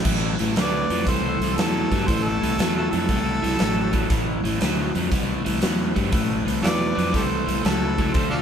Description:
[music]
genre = blues rock power trio and southern rock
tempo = 118 BPM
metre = 4/4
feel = swing 67% on 8ths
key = A minor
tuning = A4 = 440 Hz
[part]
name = crunchy overdriven guitar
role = riff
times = 0.0-8.4 s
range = A2 to A3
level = -25 LUFS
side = left 1 dB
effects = none
[part]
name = modern bright fingered electric bass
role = bass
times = 0.0-8.4 s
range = A1 to G2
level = -27 LUFS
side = equal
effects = none
[part]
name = huge arena drum kit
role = drums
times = 0.0-8.3 s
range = crash cymbal, hi-hat, kick drum, snare drum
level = -24 LUFS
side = equal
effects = none
[part]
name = warm harmonica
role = melody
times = 0.6-8.4 s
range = D4 to D5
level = -27 LUFS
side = equal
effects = overdrive
[part]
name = lead guitar through a small cranked amp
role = second line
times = 0.6-8.4 s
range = E4 to B4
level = -31 LUFS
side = right 6 dB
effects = overdrive
[sound]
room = light reverb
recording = band playing live in one room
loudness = -20 LUFS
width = side -8 dB against mid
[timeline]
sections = 0.0-8.4 A section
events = none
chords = 0.0 Am

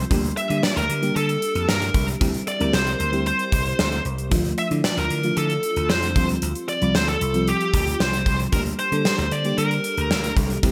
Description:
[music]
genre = 1980s-style pop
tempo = 114 BPM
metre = 4/4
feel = straight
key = unclear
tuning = A4 = 440 Hz
[part]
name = FM electric piano with soft pad layer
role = accompaniment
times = 0.0-10.7 s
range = F3 to Bb4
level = -28 LUFS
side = equal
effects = chorus, tremolo
[part]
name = vintage slap bass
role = bass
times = 0.0-10.7 s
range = C2 to D3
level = -28 LUFS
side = equal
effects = none
[part]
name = gated 80s drum kit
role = drums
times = 0.1-10.7 s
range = hi-hat, kick drum, snare drum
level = -26 LUFS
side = equal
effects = gated reverb
[part]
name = high-gain lead guitar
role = melody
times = 0.4-10.3 s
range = G4 to E5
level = -27 LUFS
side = equal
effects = distortion
[sound]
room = moderate plate reverb, RT60 1.9 s, small room ambience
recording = bright 1980s-style digital production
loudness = -22 LUFS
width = mono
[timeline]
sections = 0.0-10.7 A section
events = none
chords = 0.1 Gm/D; 2.2 C; 4.3 Dm; 6.2 Fsus2; 8.5 Gm/D

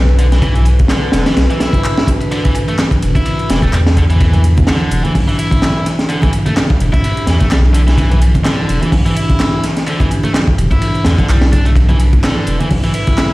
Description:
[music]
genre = breakbeat, breaks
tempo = 127 BPM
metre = 4/4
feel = swing 56% on 16ths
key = E minor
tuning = A4 = 439 Hz
[part]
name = warbly tape-like pad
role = sustained chords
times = 0.0-13.3 s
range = E3 to B4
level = -21 LUFS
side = left 1 dB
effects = chorus, built-in reverb, vintage 12-bit sampler grit, sidechain pumping
[part]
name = saturated sub bass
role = bass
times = 0.0-12.8 s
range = E1 to E2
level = -12 LUFS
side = equal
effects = none
[part]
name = crunchy breakbeat drum kit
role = drums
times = 0.1-13.3 s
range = hi-hat, kick drum, ride cymbal, snare drum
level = -14 LUFS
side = equal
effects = none
[part]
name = tight distorted guitar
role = riff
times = 0.2-13.3 s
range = D3 to E4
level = -20 LUFS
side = equal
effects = distortion, tube saturation, tape echo
[part]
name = punchy analog drum machine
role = drums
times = 0.2-13.3 s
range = handclaps, hi-hat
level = -27 LUFS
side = equal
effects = overdrive
[part]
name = congas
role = percussion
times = 4.3-12.8 s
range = none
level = -22 LUFS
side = right 2 dB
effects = none
[sound]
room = little or no reverb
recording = played on a big sound system in a bare room, large studio reverb, vinyl crackle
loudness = -10 LUFS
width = side -19 dB against mid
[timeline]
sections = 0.0-13.3 A section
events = none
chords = 0.0 Em9

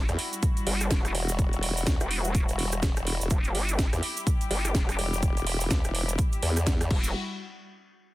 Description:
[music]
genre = bass house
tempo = 125 BPM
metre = 4/4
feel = swing 59% on 16ths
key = E minor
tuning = A4 = 440 Hz
[part]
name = rich studio string section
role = sustained chords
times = 0.0-7.1 s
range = G3 to G4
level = -36 LUFS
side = left 3 dB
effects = sidechain pumping, low-pass filter
[part]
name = vowel-sweep wobble bass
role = bass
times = 0.0-7.1 s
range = E1 to G1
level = -29 LUFS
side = equal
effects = chorus, overdrive, sidechain pumping
[part]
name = formant-sweep wobble bass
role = bass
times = 0.1-6.9 s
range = E1 to E2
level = -28 LUFS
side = equal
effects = chorus, overdrive, sidechain pumping
[part]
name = house drum kit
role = drums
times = 0.1-7.0 s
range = crash cymbal, hi-hat, rim click, snare drum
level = -32 LUFS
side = right 1 dB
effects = none
[part]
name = cabasa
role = percussion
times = 0.1-7.1 s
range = none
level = -37 LUFS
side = right 4 dB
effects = none
[part]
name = electronic kick drum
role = drums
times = 0.4-7.0 s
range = none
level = -26 LUFS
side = equal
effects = none
[sound]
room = little or no reverb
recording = dense, heavily limited modern master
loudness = -24 LUFS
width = side -18 dB against mid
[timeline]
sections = 0.0-7.1 A section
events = drop 0.0-7.1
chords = 0.0 Emadd9; 7.1 N.C.

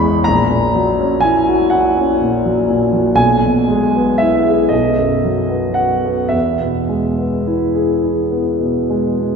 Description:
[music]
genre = classical, romantic nocturne for solo piano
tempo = 34-42 BPM (dotted quarters)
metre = 6/8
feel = rubato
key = unclear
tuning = A4 = 441 Hz
[part]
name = warm concert grand piano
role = solo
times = 0.0-9.4 s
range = A1 to D#6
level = -13 LUFS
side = equal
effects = none
[sound]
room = wet church reverb, RT60 3.1 s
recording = dark, warm production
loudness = -13 LUFS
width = side -6 dB against mid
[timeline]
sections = 0.0-9.4 A section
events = none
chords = 0.3 F#7/A#; 3.2 E/B; 4.7 B; 6.3 E

